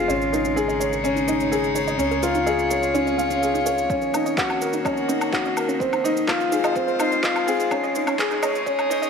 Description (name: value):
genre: piano and strings electronica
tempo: 126 BPM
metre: 4/4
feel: straight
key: unclear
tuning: A4 = 440 Hz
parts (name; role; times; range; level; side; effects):
- rich string quartet; sustained chords; 0.0-9.1 s; Db3 to Db5; -27 LUFS; left 1 dB; sidechain pumping, low-pass filter
- wide unison pluck; arpeggios; 0.0-9.1 s; C4 to Eb5; -31 LUFS; right 3 dB; none
- dark upright piano; riff; 0.0-9.1 s; C4 to F5; -21 LUFS; left 1 dB; digital delay
- round analog bass; bass; 0.0-9.1 s; Eb1 to Db2; -36 LUFS; right 1 dB; sidechain pumping
- electronic shaker, woodblock and handclaps; drums; 0.1-9.1 s; none; -28 LUFS; equal; none
- electronic kick drum; drums; 3.9-8.8 s; none; -34 LUFS; right 1 dB; none
room: wet echo chamber reverb, RT60 1.7 s, digital ambience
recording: high-pass filter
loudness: -19 LUFS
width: side -6 dB against mid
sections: 0.0-9.1 A section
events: build-up 0.0-9.1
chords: 0.1 Absus4; 2.0 Db; 3.9 Ebm7; 5.8 Fm7; 7.7 Absus4